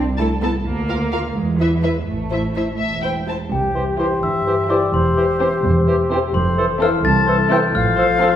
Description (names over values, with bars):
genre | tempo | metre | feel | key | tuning
cinematic, playful, whimsical film cue | 85 BPM (dotted quarters) | 6/8 | straight | A minor, C major from 3.5 s | A4 = 441 Hz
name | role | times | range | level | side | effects
muted chamber double bass section | bass | 0.0-8.3 s | E1 to E2 | -23 LUFS | right 2 dB | none
muted chamber violin section | melody | 0.2-8.4 s | A4 to A5 | -28 LUFS | left 4 dB | none
muted studio violin section | second line | 0.2-8.4 s | E4 to C5 | -28 LUFS | left 1 dB | none
muted chamber viola section | accompaniment | 0.2-8.4 s | C4 to F4 | -27 LUFS | equal | none
muted chamber cello section | bass | 0.2-8.3 s | C2 to B3 | -24 LUFS | right 2 dB | none
glockenspiel with rubber mallets | melody | 3.5-8.4 s | G5 to A6 | -22 LUFS | left 2 dB | none
bright concert flute | second line | 3.5-8.4 s | G4 to A5 | -24 LUFS | left 4 dB | none
dark French horn section | sustained chords | 3.5-8.4 s | E3 to A4 | -22 LUFS | left 3 dB | none
warm cor anglais | second line | 3.7-8.3 s | C5 | -29 LUFS | right 4 dB | none
mellow bassoon | accompaniment | 3.7-8.3 s | E3 to F3 | -25 LUFS | right 1 dB | none
warm clarinet | second line | 3.8-8.3 s | G4 to A4 | -27 LUFS | left 3 dB | none
room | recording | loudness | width
wet recital hall reverb, RT60 1.4 s | heard from further back in the room | -16 LUFS | side -10 dB against mid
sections
0.0-3.5 A section; 3.5-8.4 B section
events
none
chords
0.0 Am/C; 0.7 Bb/D; 1.4 E; 2.1 Am; 3.5 C; 4.9 C/E; 6.3 Fmaj7; 7.7 F/A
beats
| 0.66 1.37 | 2.08 2.80 | 3.52 4.23 | 4.93 5.64 | 6.34 7.05 | 7.75